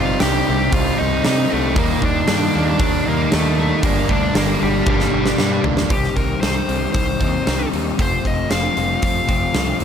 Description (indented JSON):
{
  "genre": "quiet-loud alternative rock",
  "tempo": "116 BPM",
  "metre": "4/4",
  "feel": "straight",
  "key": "unclear",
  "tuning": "A4 = 442 Hz",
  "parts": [
    { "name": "dark smooth lead guitar", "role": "melody", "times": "0.0-9.8 s", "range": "G3 to G5", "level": "-23 LUFS", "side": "left 2 dB", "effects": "overdrive, digital delay" },
    { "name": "fuzz guitar", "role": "riff", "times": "0.0-5.9 s", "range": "G2 to Eb4", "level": "-22 LUFS", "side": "right 13 dB", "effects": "distortion" },
    { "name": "overdriven semi-hollow guitar", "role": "riff", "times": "0.0-9.8 s", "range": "G2 to G4", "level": "-23 LUFS", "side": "left 15 dB", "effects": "none" },
    { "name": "growling picked electric bass", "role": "bass", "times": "0.0-9.8 s", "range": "F1 to C3", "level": "-23 LUFS", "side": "equal", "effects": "overdrive" },
    { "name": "huge arena drum kit", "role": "drums", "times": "0.2-9.8 s", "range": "hi-hat, kick drum, snare drum, toms", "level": "-21 LUFS", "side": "equal", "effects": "none" },
    { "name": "twelve-string electric guitar", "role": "arpeggios", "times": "5.9-9.8 s", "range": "F2 to Eb4", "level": "-28 LUFS", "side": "right 6 dB", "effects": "ensemble chorus, digital delay" }
  ],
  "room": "little or no reverb",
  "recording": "none",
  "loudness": "-16 LUFS",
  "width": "side -8 dB against mid",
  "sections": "0.0-5.9 A section; 5.9-9.8 B section",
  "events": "drum fill 4.9-5.9",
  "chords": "0.0 Cm; 1.8 Eb; 3.8 Gm; 5.9 Cm; 8.0 F"
}